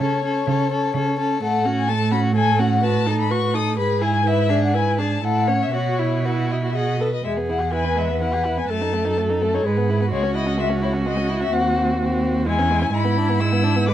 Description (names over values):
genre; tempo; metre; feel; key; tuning
quick classical-period movement for string quartet; 126 BPM; 3/4; rubato; E major; A4 = 437 Hz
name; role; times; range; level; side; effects
warm violin; melody; 0.0-13.9 s; A4 to E6; -25 LUFS; left 6 dB; none
warm violin; second line; 0.0-13.9 s; G#3 to C#5; -25 LUFS; left 4 dB; none
rich viola; accompaniment; 0.0-13.9 s; A3 to B4; -25 LUFS; right 2 dB; none
rich cello; bass; 0.0-13.9 s; C#2 to C#3; -22 LUFS; right 3 dB; none
room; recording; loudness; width
light reverb; dark, warm production; -18 LUFS; side -11 dB against mid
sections
0.0-7.2 A section; 7.2-13.9 B section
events
none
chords
0.0 A/C#; 1.4 F#m/A; 2.8 B7/A; 3.8 E/G#; 4.2 E7/G#; 5.2 A; 5.7 Bsus4; 6.7 B; 7.2 E; 8.7 D#dim/F#; 9.6 E/G#; 10.1 C#m; 11.5 Cdim/Eb; 12.5 C#m/E; 12.9 E7/G#